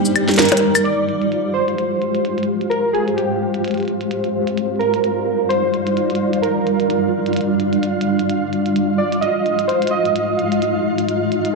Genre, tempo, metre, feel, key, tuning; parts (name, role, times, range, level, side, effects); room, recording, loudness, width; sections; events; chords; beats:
IDM; 129 BPM; 4/4; swing 56% on 16ths; Ab lydian; A4 = 444 Hz
warbly lo-fi synth keys; melody; 0.0-10.8 s; G4 to Eb5; -20 LUFS; right 2 dB; chorus, dub echo
granular cloud pad; sustained chords; 0.0-11.6 s; G3 to Eb5; -19 LUFS; equal; built-in reverb
flickering grainy texture; texture; 0.0-11.6 s; G3 to G6; -26 LUFS; right 1 dB; built-in reverb
glitchy drum kit; drums; 0.1-11.5 s; claves, hi-hat, percussion blips, shaker, snare drum; -22 LUFS; left 2 dB; low-pass filter on hats, studio reverb, low-pass filter on perc, low-pass filter on snare
wet digital room reverb, RT60 0.9 s, digital ambience; dark, warm production; -16 LUFS; side -2 dB against mid
0.9-11.6 A section
band accent 0.4; filter sweep on ambient pad 0.9-11.6
0.0 Ebmaj7; 0.9 Abmaj7; 4.6 Ebmaj7; 8.3 Fm7
0.39 | 0.85 1.32 1.78 2.25 | 2.71 3.18 3.64 4.11 | 4.57 5.04 5.50 5.97 | 6.43 6.90 7.37 7.83 | 8.29 8.76 9.23 9.69 | 10.16 10.62 11.09